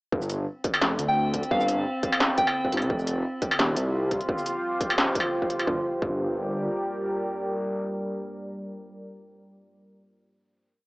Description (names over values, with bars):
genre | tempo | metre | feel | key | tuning
half-time drum and bass | 173 BPM | 4/4 | swing 54% on 16ths, half-time | G minor | A4 = 439 Hz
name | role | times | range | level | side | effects
dark detuned saw bass | bass | 0.1-6.7 s | Eb1 to D2 | -28 LUFS | equal | none
electronic kick drum | drums | 0.1-6.1 s | none | -31 LUFS | equal | distortion, cassette tape
metallic inharmonic drone | texture | 1.0-4.3 s | C4 | -34 LUFS | equal | chorus, built-in reverb, cassette tape
industrial drum kit | drums | 0.2-5.7 s | hi-hat, shaker, snare drum, struck metal | -25 LUFS | equal | cassette tape
soft synth bell | melody | 1.1-2.5 s | F5 to G5 | -27 LUFS | equal | chorus, phaser, analog delay
deep dark ambient pad | sustained chords | 3.6-9.2 s | G3 to D5 | -29 LUFS | equal | chorus, built-in reverb, sidechain pumping, cassette tape
room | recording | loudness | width
moderate lush hall reverb, RT60 1.6 s | home recording on cassette, small speaker sound | -24 LUFS | side -24 dB against mid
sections
0.1-5.7 drop; 5.7-8.4 final chord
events
drop 0.1-5.7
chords
0.1 G5; 2.9 Fsus2; 5.7 Gm